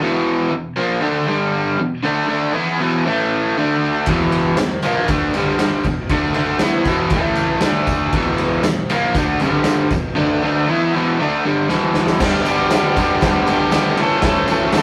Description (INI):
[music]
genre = garage rock duo or trio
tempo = 118 BPM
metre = 4/4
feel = straight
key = unclear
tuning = A4 = 444 Hz
[part]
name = overdriven electric guitar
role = riff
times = 0.0-14.8 s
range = E2 to A4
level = -18 LUFS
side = equal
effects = none
[part]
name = oversized low-tuned drum kit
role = drums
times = 4.1-14.8 s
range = crash cymbal, kick drum, ride cymbal, snare drum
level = -23 LUFS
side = equal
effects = none
[part]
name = tambourine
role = percussion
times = 4.6-14.8 s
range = none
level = -42 LUFS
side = equal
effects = none
[sound]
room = wet studio reverb, RT60 0.5 s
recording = rough rehearsal-room recording, tube saturation, cassette tape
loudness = -18 LUFS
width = mono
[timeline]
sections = 0.0-12.2 A section; 12.2-14.8 B section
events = drum fill 11.7-12.2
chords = 0.0 E5; 1.3 G5; 1.8 E5; 3.1 A5; 3.6 D5; 4.1 E5; 5.3 G5; 5.9 E5; 7.1 A5; 7.6 D5; 8.1 E5; 9.4 G5; 9.9 E5; 12.2 G; 14.0 A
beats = | 0.02 0.53 1.03 1.54 | 2.05 2.55 3.06 3.57 | 4.07 4.58 5.09 5.60 | 6.10 6.61 7.12 7.63 | 8.14 8.64 9.15 9.66 | 10.17 10.68 11.19 11.70 | 12.20 12.71 13.22 13.72 | 14.23 14.73